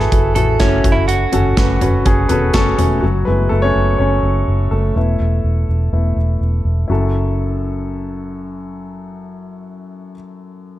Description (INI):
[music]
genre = piano-driven pop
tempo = 124 BPM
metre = 4/4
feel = straight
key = F# minor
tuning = A4 = 440 Hz
[part]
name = direct-recorded clean electric guitar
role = melody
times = 0.0-2.7 s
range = C#4 to A4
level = -20 LUFS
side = right 4 dB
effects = none
[part]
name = warm concert grand piano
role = accompaniment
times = 0.0-10.8 s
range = F#2 to C#6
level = -19 LUFS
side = left 1 dB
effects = none
[part]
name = vintage muted fingered electric bass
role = bass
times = 0.0-10.1 s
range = E1 to A1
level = -17 LUFS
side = equal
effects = none
[part]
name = modern studio drum kit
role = drums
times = 0.0-2.9 s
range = handclaps, hi-hat, kick drum, snare drum, toms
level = -17 LUFS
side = equal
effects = none
[sound]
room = light reverb, studio reverb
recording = dark, warm production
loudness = -13 LUFS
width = side -14 dB against mid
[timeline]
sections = 0.0-3.0 A section; 3.0-6.9 B section; 6.9-10.8 C section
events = grand piano fill 2.3-3.0; grand piano solo 3.0-6.9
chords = 0.0 F#m7; 0.8 F#m; 3.0 F#m7; 5.0 Esus4; 6.9 F#m7